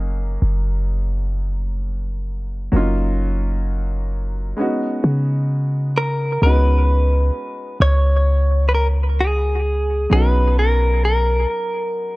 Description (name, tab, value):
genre	contemporary R&B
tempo	65 BPM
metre	4/4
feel	swing 58% on 16ths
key	F# major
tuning	A4 = 440 Hz
part	warm baby grand piano	accompaniment	0.0-12.2 s	F#3 to G#4	-26 LUFS	equal	none
part	clean 808-style bass	bass	0.0-11.5 s	F#1 to C#3	-18 LUFS	equal	none
part	direct-recorded clean electric guitar	melody	6.0-12.2 s	G#4 to C#5	-21 LUFS	equal	analog delay
room	light reverb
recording	echo-heavy mix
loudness	-16 LUFS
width	side -21 dB against mid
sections	0.0-6.4 A section; 6.4-12.2 B section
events	none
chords	0.0 F#69; 2.7 D#m9/F#; 4.6 C#9sus4; 10.1 Bmaj9